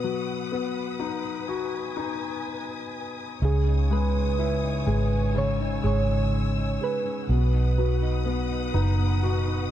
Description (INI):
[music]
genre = pop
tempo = 62 BPM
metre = 4/4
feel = straight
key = B major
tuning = A4 = 440 Hz
[part]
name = soft struck synth lead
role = melody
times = 0.0-8.8 s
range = G#4 to C#5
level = -31 LUFS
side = right 3 dB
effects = chorus
[part]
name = clear baby grand piano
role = accompaniment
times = 0.0-9.7 s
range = B2 to F#4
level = -29 LUFS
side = left 6 dB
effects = none
[part]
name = warm studio string section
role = sustained chords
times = 0.0-9.7 s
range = B4 to E6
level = -35 LUFS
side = left 2 dB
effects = none
[part]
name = nylon-string guitar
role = arpeggios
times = 3.4-9.7 s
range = B2 to B4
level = -33 LUFS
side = right 7 dB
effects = none
[part]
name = vintage muted fingered electric bass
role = bass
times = 3.4-9.7 s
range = F#1 to C#2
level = -24 LUFS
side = right 1 dB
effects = none
[sound]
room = small room ambience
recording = dark, warm production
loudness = -23 LUFS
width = side -11 dB against mid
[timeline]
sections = 0.0-9.7 A section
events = none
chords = 0.0 B; 3.4 C#madd9; 7.3 B